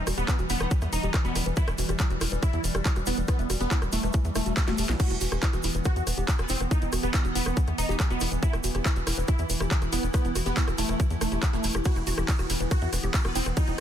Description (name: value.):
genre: psychedelic trance.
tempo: 140 BPM.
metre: 4/4.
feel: straight.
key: E harmonic minor.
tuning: A4 = 440 Hz.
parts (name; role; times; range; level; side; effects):
supersaw stab; melody; 0.0-13.8 s; A3 to F#4; -33 LUFS; right 1 dB; phaser, sidechain pumping, digital delay.
evolving wavetable pad; sustained chords; 0.0-13.8 s; E3 to E4; -34 LUFS; right 1 dB; chorus, built-in reverb, sidechain pumping.
tight sequencer bass; bass; 0.0-13.7 s; E1 to E2; -29 LUFS; equal; none.
woody wave-folded pluck; riff; 0.1-13.7 s; D#4 to F#5; -36 LUFS; moving between left 2 dB and right 4 dB; chorus, auto-pan, sidechain pumping, digital delay.
drum and bass drum kit; drums; 0.1-13.8 s; crash cymbal, handclaps, hi-hat, ride cymbal, rim click, snare drum; -32 LUFS; equal; overdrive.
tube shaker; percussion; 0.1-13.8 s; none; -40 LUFS; right 3 dB; none.
electronic kick drum; drums; 0.3-13.7 s; none; -25 LUFS; equal; none.
metallic wobble bass; second line; 0.5-0.7, 6.4-8.1, 13.2-13.4 s; B3 to G4; -45 LUFS; left 1 dB; none.
room: digital ambience.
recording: dense, heavily limited modern master.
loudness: -24 LUFS.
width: side -10 dB against mid.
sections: 0.0-13.8 A section.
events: drum fill 4.6-5.0.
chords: 0.0 E5.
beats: 0.28 0.71 1.14 | 1.57 2.00 2.43 2.85 | 3.28 3.71 4.14 4.57 | 5.00 5.43 5.86 6.28 | 6.71 7.14 7.57 8.00 | 8.43 8.86 9.28 9.71 | 10.14 10.57 11.00 11.43 | 11.86 12.28 12.71 13.14 | 13.57.